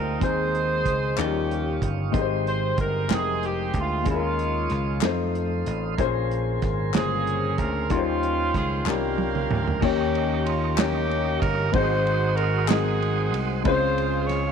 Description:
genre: slow gospel.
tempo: 62 BPM (dotted quarters).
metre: 6/8.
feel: straight.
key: Ab major.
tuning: A4 = 439 Hz.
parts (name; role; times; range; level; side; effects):
edgy saxophone section; melody; 0.0-14.5 s; Ab3 to Db5; -27 LUFS; right 3 dB; none.
warm upright piano; accompaniment; 0.0-14.5 s; Ab2 to G5; -27 LUFS; left 12 dB; none.
tonewheel organ; sustained chords; 0.0-14.5 s; Ab3 to Eb6; -34 LUFS; right 13 dB; fast rotary speaker.
vintage slap bass; bass; 0.0-14.5 s; F1 to F2; -27 LUFS; right 1 dB; none.
modern studio drum kit; drums; 0.2-14.4 s; crash cymbal, hi-hat, kick drum, ride cymbal, rim click, snare drum, toms; -28 LUFS; right 4 dB; none.
group handclap; percussion; 1.2-13.0 s; none; -33 LUFS; left 14 dB; none.
room: light reverb, studio reverb.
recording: 1960s-style stereo with parts hard left and right.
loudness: -22 LUFS.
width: side -7 dB against mid.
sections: 0.0-9.8 A section; 9.8-14.5 B section.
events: drum fill 8.9-9.8.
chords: 0.2 Ab/Eb; 1.2 Eb9; 2.1 Abmaj7; 4.1 Eb9sus4; 5.0 F7; 6.0 Bbm9; 7.9 Eb13; 9.8 Eb7; 11.7 Ab7; 13.7 Dbmaj7.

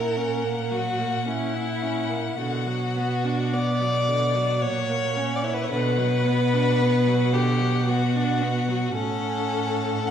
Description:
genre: classical, slow romantic movement for string quartet.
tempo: 54 BPM.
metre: 3/4.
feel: rubato.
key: B minor.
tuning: A4 = 440 Hz.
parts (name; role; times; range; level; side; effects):
warm violin; melody; 0.0-10.1 s; F#5; -34 LUFS; left 8 dB; none.
rich violin; second line; 0.0-10.1 s; E4 to F#5; -26 LUFS; left 2 dB; none.
clear viola; accompaniment; 0.0-10.1 s; D3 to E4; -29 LUFS; right 1 dB; none.
rich cello; bass; 0.0-10.1 s; A2 to B2; -25 LUFS; right 2 dB; none.
room: wet recital hall reverb, RT60 1.3 s.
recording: heard from further back in the room.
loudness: -21 LUFS.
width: side -8 dB against mid.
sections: 0.0-10.1 A section.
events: none.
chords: 0.0 F#7/A#; 2.4 Bm; 4.6 F#7/A#; 5.7 Bm; 8.9 F#m/A.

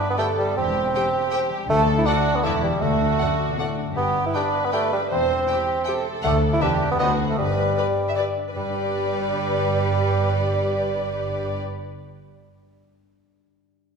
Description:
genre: cinematic, playful, whimsical film cue.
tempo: 158 BPM.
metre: 3/4.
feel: straight.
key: G major.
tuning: A4 = 440 Hz.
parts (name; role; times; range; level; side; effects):
warm symphonic violin section; second line; 0.0-11.6 s; E4 to E5; -28 LUFS; left 2 dB; none.
clear bassoon; accompaniment; 0.0-11.6 s; G3 to E4; -23 LUFS; right 2 dB; none.
concert harp; arpeggios; 0.0-12.5 s; G2 to D6; -29 LUFS; left 8 dB; none.
warm studio violin section; melody; 0.2-11.6 s; D5 to G5; -33 LUFS; left 4 dB; none.
warm studio viola section; accompaniment; 0.2-11.6 s; E4 to D5; -33 LUFS; left 1 dB; none.
dark studio double bass section; bass; 0.6-11.6 s; E1 to D2; -30 LUFS; right 2 dB; none.
warm studio cello section; bass; 0.6-11.6 s; D2 to B2; -29 LUFS; right 3 dB; none.
room: wet scoring stage reverb, RT60 1.9 s.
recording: minimal, uncompressed stereo recording.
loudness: -20 LUFS.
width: side -5 dB against mid.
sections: 0.0-8.6 A section; 8.6-10.8 B section.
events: none.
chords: 0.0 G; 0.6 C/E; 1.7 D; 2.4 Em7; 2.8 D; 4.0 G; 5.1 C/E; 6.2 D; 6.6 Em7; 7.0 D7b9; 7.4 G.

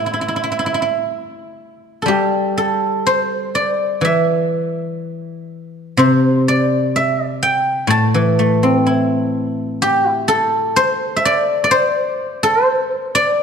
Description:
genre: chinese traditional, Chinese solo plucked strings.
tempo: 62 BPM.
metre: 4/4.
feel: rubato.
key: C gong mode.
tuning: A4 = 440 Hz.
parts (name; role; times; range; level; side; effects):
guzheng; solo; 0.0-13.4 s; A2 to A5; -15 LUFS; equal; none.
room: moderate concert hall reverb, RT60 2.4 s.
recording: dark, warm production.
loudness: -14 LUFS.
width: side -6 dB against mid.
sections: 0.0-13.4 A section.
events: none.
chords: none.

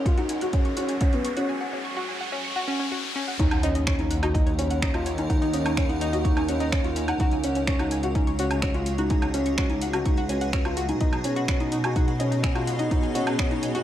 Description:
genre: piano and strings electronica.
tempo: 126 BPM.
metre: 4/4.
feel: straight.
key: Eb minor.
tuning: A4 = 439 Hz.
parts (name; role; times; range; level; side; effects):
granular cloud pad; sustained chords; 0.0-13.8 s; B3 to Gb5; -33 LUFS; right 1 dB; built-in reverb.
dark studio cello section; bass; 0.0-13.8 s; Db2 to B2; -29 LUFS; equal; sidechain pumping, high-pass filter.
riser and impact; sound effects; 0.0-5.3 s; none; -32 LUFS; equal; none.
analog pluck; arpeggios; 0.1-13.8 s; Db4 to Db6; -32 LUFS; left 1 dB; chorus, phaser, sidechain pumping, digital delay.
felt-muted upright piano; riff; 0.1-13.8 s; Cb4 to Gb4; -28 LUFS; left 1 dB; digital delay.
deep house drum kit; drums; 0.1-13.8 s; finger snaps, hi-hat, woodblock; -32 LUFS; right 1 dB; overdrive, high-pass filter on hats, high-pass filter on perc, high-pass filter on snare, high-pass filter on room.
electronic kick drum; drums; 0.1-13.5 s; none; -24 LUFS; equal; overdrive.
room: light reverb.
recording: none.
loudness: -22 LUFS.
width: side -12 dB against mid.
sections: 0.0-3.4 A section; 3.4-13.8 B section.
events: build-up 0.0-3.4; riser 0.0-3.4; break 1.5-3.4; drop 3.4-13.8; impact 3.4-5.3.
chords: 0.0 Dbsus4; 3.4 Ebm7; 7.2 Dbsus4; 11.0 B6.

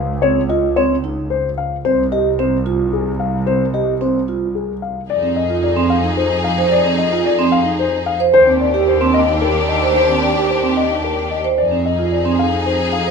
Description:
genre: classical, minimalist pattern music.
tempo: 111 BPM.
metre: 3/4.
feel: straight.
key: F dorian from 5.1 s.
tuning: A4 = 440 Hz.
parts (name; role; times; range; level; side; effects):
dark concert grand piano; melody; 0.0-13.1 s; Ab4 to F5; -18 LUFS; left 9 dB; none.
rich symphonic double bass section; bass; 0.0-13.1 s; C2 to F2; -22 LUFS; right 2 dB; none.
vibraphone with soft mallets; arpeggios; 0.2-13.1 s; C4 to C5; -18 LUFS; right 7 dB; none.
clear symphonic string section; sustained chords; 5.1-13.1 s; D4 to Ab4; -21 LUFS; left 1 dB; none.
room: light reverb.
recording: minimal, uncompressed stereo recording.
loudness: -14 LUFS.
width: side -5 dB against mid.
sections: 0.0-5.1 A section; 5.1-13.1 B section.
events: none.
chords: 0.0 Dbmaj7(no3); 1.8 N.C.; 5.1 Fm7; 8.3 Ebmaj7; 11.6 Fm7.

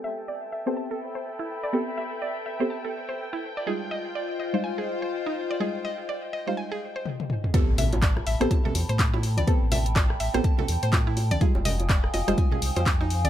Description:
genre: deep house.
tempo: 124 BPM.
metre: 4/4.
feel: swing 59% on 16ths.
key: A minor.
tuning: A4 = 440 Hz.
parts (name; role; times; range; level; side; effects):
warbly tape-like pad; sustained chords; 0.0-13.3 s; F4 to Eb6; -35 LUFS; left 2 dB; chorus, built-in reverb, sidechain pumping.
mallet-like synth pluck; arpeggios; 0.0-13.3 s; Eb4 to A5; -33 LUFS; right 1 dB; chorus, sidechain pumping, dub echo.
deep mellow chord stab; stabs; 0.0-13.3 s; G3 to A4; -30 LUFS; right 1 dB; chorus, sidechain pumping, tape echo.
string machine, violins; texture; 0.0-7.1 s; G5; -40 LUFS; equal; ensemble chorus, sidechain pumping.
warm studio string section; texture; 0.0-7.1 s; F4 to B5; -36 LUFS; left 1 dB; sidechain pumping.
deep house drum kit; drums; 7.1-13.3 s; handclaps, hi-hat, rim click, toms; -30 LUFS; left 1 dB; none.
electronic kick drum; drums; 7.5-13.0 s; none; -23 LUFS; equal; none.
bongos and congas; percussion; 7.5-13.3 s; none; -32 LUFS; right 2 dB; none.
impact; sound effects; 7.5-9.5 s; none; -33 LUFS; equal; none.
sub bass with octave; bass; 7.7-13.3 s; F1 to A2; -26 LUFS; equal; sidechain pumping.
room: little or no reverb.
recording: low-pass filter.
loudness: -24 LUFS.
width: side -12 dB against mid.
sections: 0.0-7.5 A section; 7.5-13.3 B section.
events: filter sweep on ambient pad 0.0-7.5; filter sweep on synth arpeggio sound 0.0-7.5; filter sweep 0.0-7.5; drum fill 7.1-7.5; drop 7.5-13.3; impact 7.5-9.5.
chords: 0.0 Am9; 3.7 Fm9; 7.5 Am9; 11.4 Fm9.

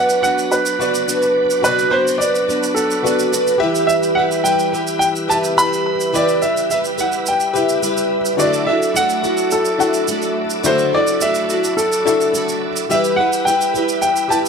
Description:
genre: acoustic pop.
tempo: 107 BPM.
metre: 4/4.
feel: straight.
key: unclear.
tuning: A4 = 440 Hz.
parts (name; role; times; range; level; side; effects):
warm upright piano; melody; 0.0-14.4 s; A4 to B5; -18 LUFS; equal; plate reverb, digital delay.
felt-muted upright piano; accompaniment; 0.0-14.5 s; D4 to G5; -24 LUFS; left 7 dB; plate reverb.
picked plugged-in twelve-string acoustic guitar; accompaniment; 0.0-14.5 s; B2 to B4; -18 LUFS; right 1 dB; double-tracked left and right.
bright tonewheel organ; sustained chords; 0.0-14.5 s; F#3 to D5; -27 LUFS; equal; overdrive, chorus vibrato, slow rotary speaker.
tube shaker; percussion; 0.1-14.5 s; none; -26 LUFS; right 6 dB; none.
room: moderate studio reverb, RT60 0.8 s.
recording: none.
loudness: -14 LUFS.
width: side -5 dB against mid.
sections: 0.0-14.5 A section.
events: none.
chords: 0.0 Bm; 3.6 Em; 8.4 Dadd9; 12.9 Em.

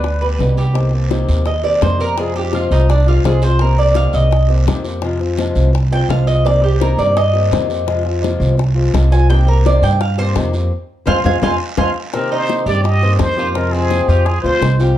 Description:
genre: latin, Cuban son and guajira.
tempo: 169 BPM.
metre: 4/4.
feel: straight.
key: C minor.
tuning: A4 = 440 Hz.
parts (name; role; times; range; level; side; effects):
trumpet with plunger mute; melody; 0.0-0.4, 12.1-14.8 s; G4 to Eb5; -20 LUFS; right 1 dB; none.
fingerpicked swing-style acoustic guitar; accompaniment; 0.0-15.0 s; B2 to G4; -21 LUFS; left 4 dB; none.
Cuban tres; arpeggios; 0.0-15.0 s; C4 to Ab5; -19 LUFS; right 2 dB; none.
upright bass; bass; 0.0-15.0 s; C2 to G2; -14 LUFS; equal; none.
bongos; percussion; 0.0-15.0 s; none; -24 LUFS; left 7 dB; none.
guiro; percussion; 0.0-15.0 s; none; -34 LUFS; right 4 dB; none.
room: light reverb.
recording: dark, warm production.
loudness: -13 LUFS.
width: side -12 dB against mid.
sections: 0.8-12.1 A section; 12.1-15.0 B section.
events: Cuban tres solo 0.8-12.1; band accent 10.7-12.1.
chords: 0.0 G; 0.8 Cm7; 2.2 Fm; 3.6 Cm7; 5.0 Fm; 6.5 Cm7; 7.9 Fm; 9.3 Cm7; 10.7 Fm; 12.1 Cm7; 13.6 Fm.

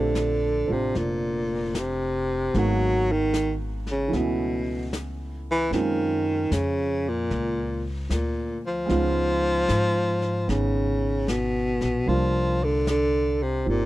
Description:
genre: jazz ballad.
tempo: 75 BPM.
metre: 4/4.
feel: swing 68% on 8ths.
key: unclear.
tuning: A4 = 440 Hz.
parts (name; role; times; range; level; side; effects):
clear baritone saxophone; melody; 0.0-13.9 s; Bb2 to Gb3; -24 LUFS; equal; none.
warm grand piano; accompaniment; 0.0-13.9 s; E3 to G4; -30 LUFS; right 4 dB; none.
upright bass; bass; 0.0-13.9 s; F1 to Ab2; -28 LUFS; equal; none.
vintage brush drum kit; drums; 0.2-13.9 s; brushed snare drum, hi-hat, snare drum; -34 LUFS; left 2 dB; none.
room: studio reverb.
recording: dry, close 1970s-style studio recording.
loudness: -22 LUFS.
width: side -16 dB against mid.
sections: 0.0-13.9 A section.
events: none.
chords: 0.0 Bbmaj13; 2.5 Abm7; 4.1 Aadd9/C#; 5.7 Gbmaj9#11; 8.9 Db9; 12.1 C9sus4.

